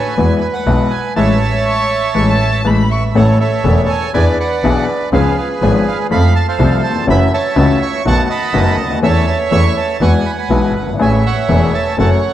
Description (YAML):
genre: tango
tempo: 122 BPM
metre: 4/4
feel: rubato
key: A major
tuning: A4 = 440 Hz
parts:
  - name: bandoneon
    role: melody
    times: 0.0-12.3 s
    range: G#4 to C#6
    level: -18 LUFS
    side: right 4 dB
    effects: none
  - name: warm upright piano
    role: accompaniment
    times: 0.2-12.2 s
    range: E1 to A4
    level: -15 LUFS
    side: left 4 dB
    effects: none
  - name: clear double bass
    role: bass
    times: 0.2-12.2 s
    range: E1 to F2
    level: -16 LUFS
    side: right 1 dB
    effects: none
  - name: rich violin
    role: second line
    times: 1.7-3.0 s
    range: A5 to C#6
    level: -19 LUFS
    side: equal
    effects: none
room: moderate concert hall reverb, RT60 1.8 s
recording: dark, warm production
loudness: -11 LUFS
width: side -12 dB against mid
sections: 0.0-3.2 A section; 3.2-12.3 B section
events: band accent 1.2-3.2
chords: 0.2 Eadd9; 1.2 Amaj7; 3.2 A; 4.1 E7; 5.1 C#7; 6.1 F; 7.1 F#m7; 8.1 B7; 9.0 A/E; 10.0 Eadd9; 11.0 Amaj7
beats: 0.18 0.68 | 1.17 1.66 2.15 2.65 | 3.15 3.65 4.14 4.64 | 5.13 5.62 6.11 6.60 | 7.08 7.57 8.06 8.54 | 9.03 9.52 10.01 10.51 | 11.00 11.49 11.99